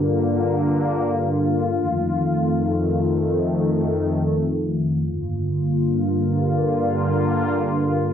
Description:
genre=hip hop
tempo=free time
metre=none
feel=none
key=G minor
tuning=A4 = 440 Hz
part: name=sweeping resonant pad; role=solo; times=0.0-8.1 s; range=F2 to F4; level=-19 LUFS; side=equal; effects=chorus
room=wet studio ambience, RT60 0.5 s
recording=none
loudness=-19 LUFS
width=side -8 dB against mid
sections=0.0-8.1 A section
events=none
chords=0.0 Gm7; 1.8 F7; 5.0 Gm7

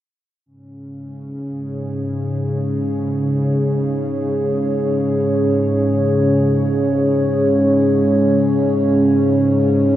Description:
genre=dark ambient drone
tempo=free time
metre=none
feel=none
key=unclear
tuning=A4 = 440 Hz
part: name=dark analog pad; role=sustained chords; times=0.5-10.0 s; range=C#4 to C#5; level=-18 LUFS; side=equal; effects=chorus
part: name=bowed-like drone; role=drone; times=0.9-10.0 s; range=G#2 to C#3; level=-19 LUFS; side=equal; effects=built-in reverb
room=wet huge ambient reverb, RT60 8.8 s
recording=worn, warbling old tape, cassette tape, warbly pitch drift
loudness=-15 LUFS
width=side -12 dB against mid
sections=0.5-10.0 A section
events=filter sweep on synth drone 0.5-10.0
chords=0.5 C#5

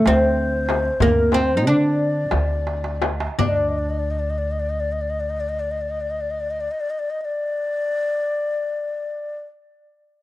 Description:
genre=Turkish makam ensemble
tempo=161-197 BPM (eighths)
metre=7/8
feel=straight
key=unclear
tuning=A4 = 440 Hz
part: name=oud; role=melody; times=0.0-6.7 s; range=Bb3 to Eb4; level=-20 LUFS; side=equal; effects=none
part: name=breathy low ney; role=second line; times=0.0-9.4 s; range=Bb4 to Eb5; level=-24 LUFS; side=left 2 dB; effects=none
part: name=upright bass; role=bass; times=0.1-6.7 s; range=D2 to D3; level=-24 LUFS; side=equal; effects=none
part: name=darbuka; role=percussion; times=0.1-3.7 s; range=none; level=-26 LUFS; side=right 3 dB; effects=none
part: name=frame drum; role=percussion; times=0.1-3.7 s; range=none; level=-26 LUFS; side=left 10 dB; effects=none
room=small room ambience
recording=dry, close 1970s-style studio recording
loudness=-20 LUFS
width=side -15 dB against mid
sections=0.0-3.4 A section; 3.4-8.6 B section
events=slowing down 0.0-3.4; drum fill 2.7-3.4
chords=none

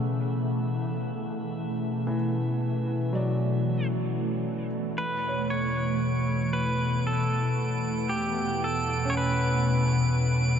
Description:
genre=ambient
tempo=57 BPM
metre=4/4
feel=straight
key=unclear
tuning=A4 = 440 Hz
part: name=pedal steel guitar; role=melody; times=0.0-10.6 s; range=G4 to E5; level=-32 LUFS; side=equal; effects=diffuse ambient delay
part: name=glassy FM pad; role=sustained chords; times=0.0-10.6 s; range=E2 to F#5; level=-26 LUFS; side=left 1 dB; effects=ensemble chorus, built-in reverb
part: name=felt-muted upright piano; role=arpeggios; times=0.0-10.6 s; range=C#3 to D5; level=-35 LUFS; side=right 1 dB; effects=diffuse ambient delay
part: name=drifting glass-harmonics texture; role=texture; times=5.4-10.6 s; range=D7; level=-37 LUFS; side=right 4 dB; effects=chorus, built-in reverb
room=wet huge ambient reverb, RT60 8.6 s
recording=nothing above 7.6 kHz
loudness=-25 LUFS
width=side -8 dB against mid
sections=0.0-10.6 A section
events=fade-in on pedal steel guitar 0.0-10.6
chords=0.0 E7(no3); 4.9 E13sus4

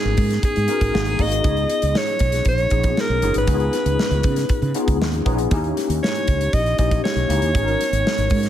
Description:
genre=polished 1980s jazz-funk pop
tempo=118 BPM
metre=4/4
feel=straight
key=unclear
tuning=A4 = 438 Hz
part: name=bright alto saxophone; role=melody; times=0.0-8.5 s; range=G#4 to D#5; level=-22 LUFS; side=right 1 dB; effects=none
part: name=mellow tine electric piano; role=accompaniment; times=0.0-8.5 s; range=A#3 to A#4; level=-24 LUFS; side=left 3 dB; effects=overdrive, medium stereo tremolo, ensemble chorus
part: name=mellow fretless electric bass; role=bass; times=0.0-8.5 s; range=F#1 to C#3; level=-22 LUFS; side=right 1 dB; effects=wide subtle chorus
part: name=modern studio drum kit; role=drums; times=0.2-8.5 s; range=hi-hat, kick drum, snare drum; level=-23 LUFS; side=equal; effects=gated reverb
room=small room reverb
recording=none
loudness=-17 LUFS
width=side -11 dB against mid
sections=0.0-8.5 A section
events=none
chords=0.0 G#m11; 0.9 G#7; 1.4 C#9; 5.5 D#7b9; 7.5 G#m11

